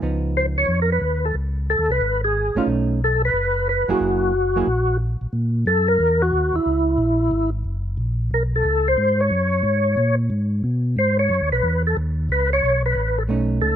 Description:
soul jazz organ trio; 181 BPM; 4/4; swing 64% on 8ths; F# mixolydian; A4 = 439 Hz
hollow-body jazz guitar; accompaniment; 0.0-4.7, 13.3-13.8 s; E#3 to G#4; -24 LUFS; right 5 dB
mellow tonewheel organ; bass; 0.0-13.8 s; F#1 to B2; -22 LUFS; equal; chorus vibrato, slow rotary speaker
overdriven tonewheel organ; melody; 0.4-13.8 s; E4 to C#5; -19 LUFS; equal; slow rotary speaker, chorus vibrato
little or no reverb; -18 LUFS; side -10 dB against mid
0.0-5.3 A section; 5.3-13.8 A section
0.0 C#9; 2.7 B9; 4.0 F#9; 10.6 B9

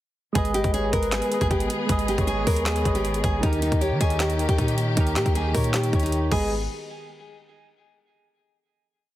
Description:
hip hop, trap; 156 BPM; 4/4; half-time; G# harmonic minor; A4 = 440 Hz
soft electric-piano-like synth keys; accompaniment; 0.3-6.5 s; D#3 to D#5; -28 LUFS; right 1 dB; chorus
nylon-string guitar; melody; 0.4-6.5 s; D#4 to A#4; -28 LUFS; equal; ping-pong delay
dark studio string section; sustained chords; 0.4-6.5 s; D#3 to G#4; -33 LUFS; left 2 dB
clean 808-style bass; bass; 0.4-6.7 s; G#1 to D#3; -26 LUFS; equal
trap drum kit; drums; 0.4-6.4 s; crash cymbal, handclaps, hi-hat, kick drum, snare drum; -26 LUFS; equal
hollow clarinet-like synth lead; second line; 0.5-6.5 s; B4 to D#5; -33 LUFS; left 4 dB; chorus, ping-pong delay
digital ambience; heavily compressed radio sound; -21 LUFS; side -14 dB against mid
0.4-6.5 hook; 6.5-8.0 final hit
0.4 G#m; 3.4 D#; 6.3 G#m; 6.5 N.C.

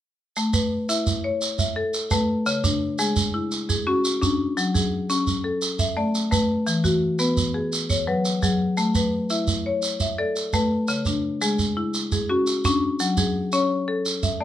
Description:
southern african traditional, mbira-style interlocking cycle; 114 BPM (dotted quarters); 12/8; straight; A major; A4 = 440 Hz
marimba with hard mallets; arpeggios; 0.4-14.4 s; C#3 to E5; -22 LUFS; left 2 dB
shekere; percussion; 0.4-14.4 s; -25 LUFS; right 4 dB
light reverb; -21 LUFS; side -11 dB against mid
0.4-14.4 A section
0.4 A; 2.5 C#m; 4.6 F#m; 5.6 A5; 6.7 E; 7.7 F#5; 8.8 A; 10.9 C#m; 13.0 F#m

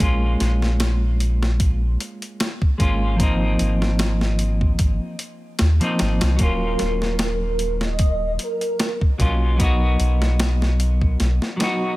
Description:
trip hop; 75 BPM; 4/4; swing 55% on 16ths; Eb minor; A4 = 440 Hz
clean electric guitar; accompaniment; 0.0-12.0 s; F3 to F#4; -25 LUFS; equal; harmonic tremolo, tape echo
soft dub sub bass; bass; 0.0-11.4 s; Eb1 to Eb2; -20 LUFS; equal
boom bap sampler-style drum kit; drums; 0.0-11.8 s; hi-hat, kick drum, snare drum; -22 LUFS; equal; studio ambience
pure breathy sine lead; melody; 6.4-9.0 s; Bb4 to Eb5; -28 LUFS; right 2 dB; phaser, ensemble chorus, dub echo
digital ambience; -18 LUFS; side -18 dB against mid
0.0-12.0 A section
0.0 Bbm7; 3.2 Ab6; 6.4 Ebm7; 9.6 B

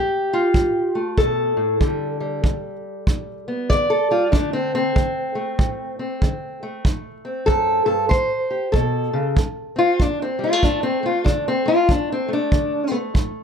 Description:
acoustic country blues, solo or duo; 95 BPM; 4/4; swing 62% on 8ths; A4 = 439 Hz
fingerpicked steel-string acoustic guitar; melody; 0.0-13.4 s; D2 to D5; -20 LUFS; left 1 dB; plate reverb
kick drum; drums; 0.5-13.3 s; -20 LUFS; right 1 dB
moderate booth ambience, RT60 0.2 s; -18 LUFS; side -7 dB against mid
0.0-9.4 A section; 9.4-13.4 B section
steel-string acoustic guitar solo 9.4-13.4
0.0 G9/A; 1.8 G5; 4.3 D7(no3); 8.1 N.C.; 9.4 D5

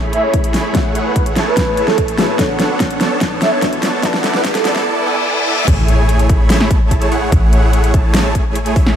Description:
future bass; 146 BPM; 4/4; half-time; A major; A4 = 439 Hz
soft round pluck; accompaniment; 0.0-4.9 s; A3 to A5; -24 LUFS; left 4 dB; ensemble chorus, sidechain pumping, dub echo
supersaw chords; riff; 0.0-8.9 s; A3 to B5; -18 LUFS; right 1 dB; sidechain pumping, low-pass filter, dub echo
warm 808-style bass; bass; 0.0-8.9 s; A1 to B1; -15 LUFS; equal; sidechain pumping, high-pass filter
riser, reverse cymbal and impact; sound effects; 2.1-7.3 s; -25 LUFS; left 2 dB
breathy flute-like synth lead; melody; 0.1-4.7 s; A4 to E5; -19 LUFS; right 2 dB; wide subtle chorus, sidechain pumping, digital delay
dubstep drum kit; drums; 0.1-8.9 s; crash cymbal, hi-hat, snare drum; -18 LUFS; equal; overdrive, small room ambience
electronic kick drum; drums; 0.3-8.8 s; -16 LUFS; equal; small room ambience
light reverb; high-pass filter; -12 LUFS; side -9 dB against mid
0.0-5.7 A section; 5.7-9.0 B section
build-up 0.0-5.7; drum fill 0.0-4.9; filter sweep 0.0-5.7; reverse cymbal 4.9-5.7; drop 5.7-9.0; impact 5.7-7.3
0.0 Amaj7; 0.7 F#m9/A; 2.4 Bm9; 4.0 E9sus4/B; 5.7 Amaj7; 7.3 F#m9/A

